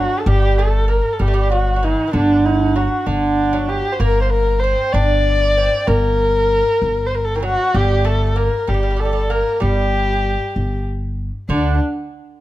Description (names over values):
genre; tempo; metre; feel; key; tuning
Persian modal ensemble; 64 BPM (dotted quarters); 6/8; straight; G avaz esfahan; A4 = 440 Hz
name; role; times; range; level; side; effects
dark kamancheh; melody; 0.0-11.8 s; D4 to D5; -18 LUFS; left 1 dB; none
lute; second line; 0.0-11.8 s; D3 to D4; -23 LUFS; right 6 dB; none
upright bass; bass; 0.0-11.8 s; G1 to D2; -18 LUFS; equal; none
room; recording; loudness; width
little or no reverb; close, detailed microphones; -15 LUFS; side -15 dB against mid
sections
0.0-11.5 A section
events
none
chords
none